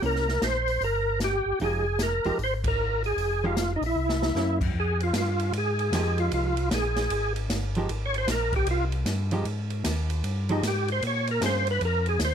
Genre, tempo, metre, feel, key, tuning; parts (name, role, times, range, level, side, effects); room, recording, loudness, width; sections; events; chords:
soul jazz organ trio; 153 BPM; 4/4; swing 65% on 8ths; F minor; A4 = 439 Hz
percussive tonewheel organ; melody; 0.0-12.3 s; Eb4 to Db5; -27 LUFS; right 1 dB; overdrive, chorus vibrato, fast rotary speaker, plate reverb
archtop guitar, miked and amplified; accompaniment; 0.0-11.7 s; F3 to C5; -30 LUFS; right 2 dB
mellow tonewheel organ; bass; 0.0-12.3 s; F1 to Bb2; -28 LUFS; equal; chorus vibrato, slow rotary speaker
open jazz drum kit; drums; 0.0-12.3 s; crash cymbal, hi-hat, kick drum, ride cymbal, snare drum; -32 LUFS; equal
light reverb; -24 LUFS; side -8 dB against mid
0.0-4.7 A section; 4.7-12.3 B section
band accent 2.6; drum fill 4.0-4.4; tonewheel organ solo 4.7-12.3
0.0 C7b9; 1.6 Fm9; 4.0 C7b9; 4.7 Fm9; 11.0 Bbm9